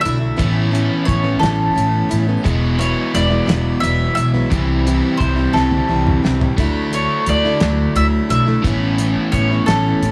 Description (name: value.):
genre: folk rock and heartland rock.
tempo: 58 BPM (dotted quarters).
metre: 6/8.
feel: straight.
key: unclear.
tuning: A4 = 439 Hz.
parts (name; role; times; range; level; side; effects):
bowl-back mandolin; melody; 0.0-10.1 s; A4 to E5; -24 LUFS; equal; none.
picked plugged-in steel-string acoustic guitar; accompaniment; 0.0-10.1 s; E2 to E4; -22 LUFS; equal; none.
overdriven electric guitar; riff; 0.0-10.1 s; E2 to F#4; -25 LUFS; equal; none.
upright bass; bass; 0.1-10.1 s; E1 to D2; -21 LUFS; equal; none.
damped 70s drum kit; drums; 0.1-10.1 s; hi-hat, kick drum, snare drum, toms; -23 LUFS; equal; none.
room: studio reverb.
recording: small room ambience.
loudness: -17 LUFS.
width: mono.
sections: 0.0-10.1 A section.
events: drum fill 5.6-6.6.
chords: 0.4 Aadd9; 2.5 Eadd9; 4.5 C; 6.6 Dadd9; 8.6 Aadd9.